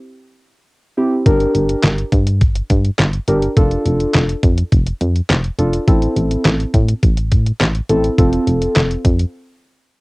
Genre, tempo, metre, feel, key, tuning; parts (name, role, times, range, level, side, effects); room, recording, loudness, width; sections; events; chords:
synth-pop; 104 BPM; 4/4; straight; G dorian; A4 = 439 Hz
muted felt-like synth keys; accompaniment; 1.0-8.8 s; C4 to Bb4; -18 LUFS; equal; chorus, cassette tape
solid FM bass; bass; 1.3-9.2 s; F1 to A2; -17 LUFS; equal
detuned 8-bit digital drum machine; drums; 1.3-9.3 s; handclaps, hi-hat, kick drum, snare drum; -15 LUFS; equal; cassette tape
light reverb; home recording on cassette; -13 LUFS; side -24 dB against mid
0.0-10.0 A section
break 9.3-10.0
0.0 C; 1.3 Gm; 3.6 Dm/F; 5.9 Am; 8.2 F